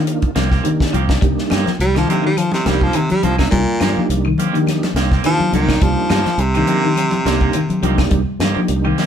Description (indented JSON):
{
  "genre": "afrobeat",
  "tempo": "104 BPM",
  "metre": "4/4",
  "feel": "swing 54% on 16ths",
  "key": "C minor",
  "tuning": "A4 = 440 Hz",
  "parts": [
    { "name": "mellow tonewheel organ", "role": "accompaniment", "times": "0.0-8.9 s", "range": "Bb3 to A4", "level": "-24 LUFS", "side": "right 6 dB", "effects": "slow rotary speaker, chorus vibrato" },
    { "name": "electric guitar at the edge of break-up", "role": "arpeggios", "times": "0.0-9.1 s", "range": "Eb3 to G3", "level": "-22 LUFS", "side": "left 5 dB", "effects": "phaser" },
    { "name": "tight funk drum kit", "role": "drums", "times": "0.1-9.1 s", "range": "hi-hat, kick drum, snare drum", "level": "-20 LUFS", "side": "equal", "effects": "none" },
    { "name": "electric guitar at the edge of break-up", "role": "stabs", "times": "0.4-9.1 s", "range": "Eb3 to G4", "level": "-25 LUFS", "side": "right 6 dB", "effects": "harmonic tremolo" },
    { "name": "fingered electric bass", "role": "bass", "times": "0.4-8.9 s", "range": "C2 to G2", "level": "-20 LUFS", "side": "equal", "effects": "none" },
    { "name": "claves", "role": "percussion", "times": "1.5-9.0 s", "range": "none", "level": "-35 LUFS", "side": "left 4 dB", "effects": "none" },
    { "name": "congas", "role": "percussion", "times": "1.5-9.1 s", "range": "none", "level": "-23 LUFS", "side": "left 3 dB", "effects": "none" },
    { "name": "bright baritone saxophone", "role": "melody", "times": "1.8-8.1 s", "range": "Bb2 to G3", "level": "-19 LUFS", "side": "right 1 dB", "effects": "none" }
  ],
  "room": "light reverb",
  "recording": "band playing live in one room",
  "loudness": "-14 LUFS",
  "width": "side -8 dB against mid",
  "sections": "0.0-9.1 A section",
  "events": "baritone saxophone solo 0.0-9.1",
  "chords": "0.0 Cm7"
}